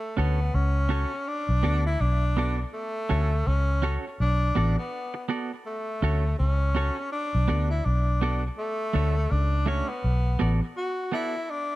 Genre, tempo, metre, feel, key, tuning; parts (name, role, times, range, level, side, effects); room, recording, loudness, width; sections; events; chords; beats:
roots reggae; 82 BPM; 4/4; swing 59% on 16ths; A4 = 440 Hz
breathy tenor saxophone; melody; 0.0-11.8 s; A3 to F#4; -30 LUFS; left 1 dB; tape echo
semi-hollow electric guitar; accompaniment; 0.2-11.3 s; A3 to D5; -32 LUFS; right 5 dB; tape echo
vintage muted fingered electric bass; bass; 0.2-10.6 s; A1 to D2; -23 LUFS; equal
light reverb; dark, warm production; -23 LUFS; side -17 dB against mid
0.0-11.8 A section
0.0 Dmaj7; 1.3 Bm7; 2.7 Dmaj7; 4.2 Bm7; 5.7 Dmaj7; 7.1 Bm7; 8.6 Dmaj7; 10.0 Bm7
0.54 1.27 2.00 | 2.73 3.46 4.19 4.92 | 5.65 6.38 7.11 7.84 | 8.57 9.30 10.03 10.77 | 11.49